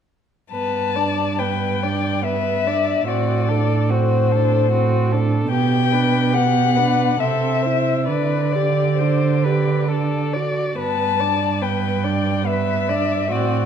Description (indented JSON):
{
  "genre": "classical, slow romantic movement for string quartet",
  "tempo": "66-76 BPM",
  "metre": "3/4",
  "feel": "rubato",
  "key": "G major",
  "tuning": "A4 = 440 Hz",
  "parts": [
    { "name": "muted violin", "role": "melody", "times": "0.5-13.7 s", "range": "C5 to A5", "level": "-22 LUFS", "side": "left 9 dB", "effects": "none" },
    { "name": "muted violin", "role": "second line", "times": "0.5-13.7 s", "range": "F#4 to D5", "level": "-26 LUFS", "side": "left 2 dB", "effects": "none" },
    { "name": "muted viola", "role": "accompaniment", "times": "0.5-13.7 s", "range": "B3 to G4", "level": "-26 LUFS", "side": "right 3 dB", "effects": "none" },
    { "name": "muted cello", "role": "bass", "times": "0.5-13.7 s", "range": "G2 to D3", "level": "-20 LUFS", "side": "right 5 dB", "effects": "none" }
  ],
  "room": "moderate recital hall reverb, RT60 1.6 s",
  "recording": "dark, warm production",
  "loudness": "-17 LUFS",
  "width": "side -8 dB against mid",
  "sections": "0.5-13.7 A section",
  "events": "none",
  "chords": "0.5 G; 3.1 D7/A; 5.5 G/B; 7.2 Am/C; 8.1 G/D; 9.9 D; 10.8 G"
}